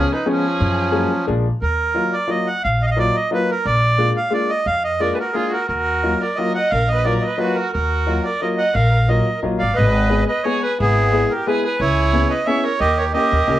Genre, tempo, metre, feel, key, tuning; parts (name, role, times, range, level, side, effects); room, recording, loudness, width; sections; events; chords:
musette waltz; 177 BPM; 3/4; straight; Eb harmonic minor, G# harmonic minor from 9.8 s; A4 = 440 Hz
accordion; melody; 0.0-13.6 s; E#3 to Gb5; -19 LUFS; right 2 dB; slapback echo
warm violin; second line; 0.0-1.3, 5.0-13.6 s; E4 to Eb5; -26 LUFS; right 2 dB
clear upright piano; accompaniment; 0.0-13.6 s; E#3 to G#4; -22 LUFS; left 3 dB
upright bass; bass; 0.0-13.6 s; Ab1 to F#2; -20 LUFS; equal
moderate small room reverb, RT60 0.5 s; worn, warbling old tape, cassette tape, warbly pitch drift; -16 LUFS; side -13 dB against mid
0.0-1.6 A section; 1.6-9.8 B section; 9.8-13.6 C section
0.0 C#7; 0.6 F#add9; 1.3 A#7; 1.6 Ebmadd9; 3.6 Bb7; 5.7 Ebmadd9; 9.8 G#m; 10.8 E/G#; 11.8 C#m7; 12.8 D#7